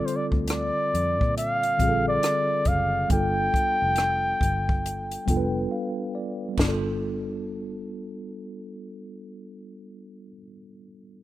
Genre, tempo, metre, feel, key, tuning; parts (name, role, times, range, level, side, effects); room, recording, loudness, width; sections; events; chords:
R&B, neo-soul; 69 BPM; 4/4; swing 62% on 16ths; A4 = 440 Hz
breathy flugelhorn; melody; 0.0-5.7 s; C5 to G5; -24 LUFS; equal
mellow tine electric piano; accompaniment; 0.0-11.2 s; D3 to G5; -30 LUFS; equal; medium stereo tremolo
compact cocktail drum kit; drums; 0.1-6.8 s; china cymbal, hi-hat, kick drum, rim click, snare drum; -26 LUFS; equal
vintage muted fingered electric bass; bass; 0.3-10.3 s; F1 to Bb2; -30 LUFS; equal
light reverb, small room ambience; rough home demo mix; -22 LUFS; side -15 dB against mid
0.0-6.6 A section; 6.6-10.1 B section
tine electric piano fill 4.8-6.6; break 5.7-6.6
0.0 Bb6; 3.1 G7